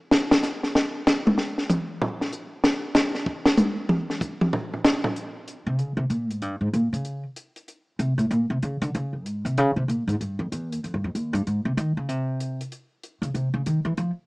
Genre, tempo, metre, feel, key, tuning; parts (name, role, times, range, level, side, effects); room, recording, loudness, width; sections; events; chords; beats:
modal jazz; 190 BPM; 4/4; swing 63% on 8ths; Bb dorian; A4 = 440 Hz
compact cocktail drum kit; drums; 0.1-14.1 s; hi-hat, kick drum, snare drum, toms; -22 LUFS; equal
upright bass; bass; 5.7-14.1 s; Eb2 to F3; -24 LUFS; equal
moderate lush hall reverb, RT60 2.1 s; rough home demo mix, small speaker sound; -22 LUFS; side -25 dB against mid
0.0-5.2 A section; 5.2-14.3 A section
drum solo 0.0-5.2; upright bass solo 5.2-14.3
| 0.12 0.43 0.74 1.06 | 1.38 1.69 2.01 2.32 | 2.64 2.95 3.27 3.58 | 3.90 4.21 4.53 4.84 | 5.16 5.47 5.79 6.10 | 6.42 6.73 7.05 7.36 | 7.68 7.99 8.31 8.62 | 8.94 9.25 9.57 9.88 | 10.20 10.51 10.83 11.14 | 11.46 11.77 12.09 12.40 | 12.71 13.03 13.35 13.66 | 13.97